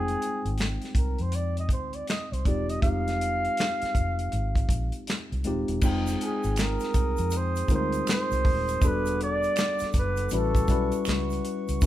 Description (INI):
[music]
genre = R&B, neo-soul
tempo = 80 BPM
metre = 4/4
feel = swing 63% on 16ths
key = unclear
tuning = A4 = 440 Hz
[part]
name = breathy flugelhorn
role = melody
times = 0.0-11.1 s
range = Ab4 to F5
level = -30 LUFS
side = right 1 dB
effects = none
[part]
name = tine electric piano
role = accompaniment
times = 0.0-11.9 s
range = G3 to G5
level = -31 LUFS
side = left 2 dB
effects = none
[part]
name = vintage muted fingered electric bass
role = bass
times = 0.0-11.9 s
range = Eb1 to F2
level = -29 LUFS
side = equal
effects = none
[part]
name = warm soul drum kit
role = drums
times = 0.1-11.9 s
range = crash cymbal, handclaps, hi-hat, kick drum, snare drum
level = -27 LUFS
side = equal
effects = none
[part]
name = glass harmonica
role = sustained chords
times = 5.8-11.9 s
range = Ab4 to Eb6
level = -40 LUFS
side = right 3 dB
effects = none
[part]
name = tube shaker and finger snaps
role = percussion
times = 5.8-11.9 s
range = none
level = -41 LUFS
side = right 6 dB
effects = none
[sound]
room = light reverb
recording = band playing live in one room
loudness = -24 LUFS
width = side -13 dB against mid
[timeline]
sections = 0.0-5.8 A section; 5.8-11.9 B section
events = none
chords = 0.0 Fm7; 5.8 Fm9; 8.8 Em11; 10.3 A13